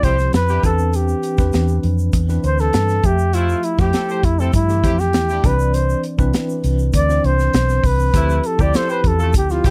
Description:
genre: polished 1980s jazz-funk pop.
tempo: 100 BPM.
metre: 4/4.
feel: straight.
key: C major.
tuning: A4 = 440 Hz.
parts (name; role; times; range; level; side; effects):
breathy flugelhorn; melody; 0.0-9.7 s; C4 to D5; -22 LUFS; equal; slapback echo.
warm horn section; second line; 0.0-9.7 s; A3 to C5; -30 LUFS; equal; none.
tine electric piano; accompaniment; 0.0-9.7 s; E3 to E5; -27 LUFS; equal; medium tremolo, lush chorus.
vintage muted fingered electric bass; bass; 0.0-9.7 s; B1 to G2; -20 LUFS; equal; none.
modern studio drum kit; drums; 0.0-9.7 s; hi-hat, kick drum, snare drum; -21 LUFS; equal; none.
egg shaker; percussion; 0.0-9.7 s; none; -43 LUFS; equal; none.
room: little or no reverb.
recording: dry, close 1970s-style studio recording.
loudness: -17 LUFS.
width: mono.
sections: 0.0-9.7 A section.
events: flugelhorn solo 0.0-9.7.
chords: 0.0 Dm11; 0.6 Cmaj9/E; 3.0 Fmaj9; 5.4 Cmaj9; 8.1 Dm11.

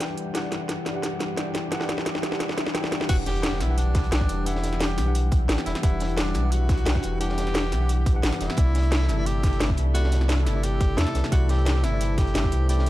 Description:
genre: liquid drum and bass.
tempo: 175 BPM.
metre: 4/4.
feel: straight.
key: E minor.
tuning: A4 = 440 Hz.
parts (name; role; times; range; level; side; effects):
tine electric piano; accompaniment; 0.0-12.9 s; C3 to G5; -30 LUFS; left 1 dB; none.
warm analog pad; sustained chords; 0.0-12.9 s; E3 to F#5; -35 LUFS; left 2 dB; chorus, sidechain pumping.
garage drum kit; drums; 0.0-12.9 s; crash cymbal, hi-hat, snare drum; -29 LUFS; equal; none.
swell and impact; sound effects; 2.5-4.5 s; none; -39 LUFS; right 1 dB; none.
warm tenor saxophone; melody; 3.1-12.9 s; D4 to A4; -32 LUFS; equal; ping-pong delay.
warm sub bass; bass; 3.1-12.9 s; E1 to E2; -23 LUFS; equal; none.
crunchy breakbeat drum kit; drums; 3.1-12.9 s; hi-hat, snare drum; -36 LUFS; equal; high-pass filter on hats, high-pass filter on snare, high-pass filter on room.
electronic kick drum; drums; 3.1-12.5 s; none; -22 LUFS; equal; none.
room: small room ambience.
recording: dark, warm production.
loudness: -21 LUFS.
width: side -15 dB against mid.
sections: 0.0-3.1 A section; 3.1-12.9 B section.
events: build-up 0.0-3.1; drum fill 0.0-3.1; drop 3.1-12.9; impact 3.1-4.5.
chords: 0.0 Em9; 8.6 C69.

